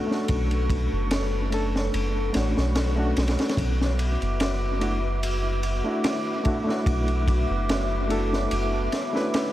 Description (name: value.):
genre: trip hop.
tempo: 73 BPM.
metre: 4/4.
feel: swing 54% on 16ths.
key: unclear.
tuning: A4 = 440 Hz.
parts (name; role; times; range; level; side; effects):
bright reed electric piano; accompaniment; 0.0-9.5 s; A3 to B4; -29 LUFS; equal; fast tremolo, harmonic tremolo, tape echo.
warbly tape-like pad; sustained chords; 0.0-9.5 s; F#4 to D6; -31 LUFS; equal; chorus, built-in reverb.
wind-like tuned noise texture; texture; 0.0-9.5 s; B3 to B4; -38 LUFS; equal; built-in reverb.
crunchy breakbeat drum kit; drums; 0.1-9.5 s; kick drum, ride cymbal, snare drum; -28 LUFS; equal; analog delay.
soft dub sub bass; bass; 0.3-8.9 s; F#1 to B1; -26 LUFS; equal; tube saturation.
room: small room ambience.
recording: echo-heavy mix, vinyl crackle.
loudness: -22 LUFS.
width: side -14 dB against mid.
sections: 0.0-9.5 A section.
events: none.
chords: 0.0 Bm9; 3.6 Dadd9.